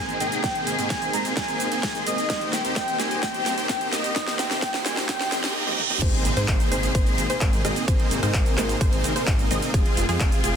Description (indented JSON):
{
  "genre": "EDM, festival progressive house",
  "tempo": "129 BPM",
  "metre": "4/4",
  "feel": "straight",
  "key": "Ab major",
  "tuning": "A4 = 435 Hz",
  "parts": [
    { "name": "breathy flute-like synth lead", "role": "melody", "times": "0.0-5.5 s", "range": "Eb5 to Bb5", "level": "-28 LUFS", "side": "equal", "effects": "analog chorus, digital delay" },
    { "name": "rich symphonic string section", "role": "sustained chords", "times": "0.0-10.6 s", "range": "C3 to Bb4", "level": "-32 LUFS", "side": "left 2 dB", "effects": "sidechain pumping" },
    { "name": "dense compressed supersaw", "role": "riff", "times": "0.0-10.6 s", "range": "Bb3 to Eb5", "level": "-27 LUFS", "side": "right 1 dB", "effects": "sidechain pumping, digital delay" },
    { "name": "wide detuned saw bass", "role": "bass", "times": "0.0-10.6 s", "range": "Eb1 to Ab2", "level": "-31 LUFS", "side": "equal", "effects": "chorus, sidechain pumping" },
    { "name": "riser, reverse cymbal and impact", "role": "sound effects", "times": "2.3-7.9 s", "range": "none", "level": "-33 LUFS", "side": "right 3 dB", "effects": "none" },
    { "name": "big-room dance drum kit", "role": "drums", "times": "0.1-10.5 s", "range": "crash cymbal, handclaps, hi-hat, ride cymbal, rim click, shaker, snare drum, toms", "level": "-29 LUFS", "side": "right 1 dB", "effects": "none" },
    { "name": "electronic kick drum", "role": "drums", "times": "0.4-10.3 s", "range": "none", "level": "-24 LUFS", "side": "equal", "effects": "none" },
    { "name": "wide unison pluck", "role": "arpeggios", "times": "6.0-10.6 s", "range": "Ab4 to Eb5", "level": "-32 LUFS", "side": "equal", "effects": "sidechain pumping, digital delay" }
  ],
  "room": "light reverb",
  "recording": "dense, heavily limited modern master, high-pass filter",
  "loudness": "-21 LUFS",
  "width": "side -8 dB against mid",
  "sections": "0.0-6.0 A section; 6.0-10.6 B section",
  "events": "build-up 0.0-6.0; drum fill 0.0-5.6, 5.7-6.0; reverse cymbal 5.1-6.0; drop 6.0-10.6; impact 6.0-7.9",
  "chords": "0.0 Abadd9; 2.3 Eb6; 6.0 Abadd9; 9.7 Fm"
}